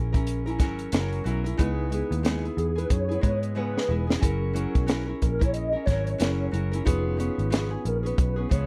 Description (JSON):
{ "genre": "indie pop, bedroom pop", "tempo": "91 BPM", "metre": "4/4", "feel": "swing 60% on 16ths", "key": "C# dorian", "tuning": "A4 = 440 Hz", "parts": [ { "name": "mellow tine electric piano", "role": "accompaniment", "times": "0.0-8.7 s", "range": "C#4 to B4", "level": "-37 LUFS", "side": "equal", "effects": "cassette tape" }, { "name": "nylon-string guitar", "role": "accompaniment", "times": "0.0-8.7 s", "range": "C#3 to A#4", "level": "-34 LUFS", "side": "equal", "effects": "subtle chorus, warbly pitch drift" }, { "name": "vintage muted picked electric bass", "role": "bass", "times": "0.0-8.7 s", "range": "E1 to G#2", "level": "-30 LUFS", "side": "equal", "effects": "none" }, { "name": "compact cocktail drum kit", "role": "drums", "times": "0.1-8.7 s", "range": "hi-hat, kick drum, snare drum", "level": "-27 LUFS", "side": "equal", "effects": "none" }, { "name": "warbly nostalgic lead", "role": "melody", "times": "2.6-8.7 s", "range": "G#4 to D#5", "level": "-33 LUFS", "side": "equal", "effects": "ensemble chorus" } ], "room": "little or no reverb", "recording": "dry, close 1970s-style studio recording", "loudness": "-26 LUFS", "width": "mono", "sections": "0.0-8.7 A section", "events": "drum fill 3.6-4.2", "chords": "0.0 F#7; 1.6 C#m7; 4.2 F#7; 6.9 C#7/E#" }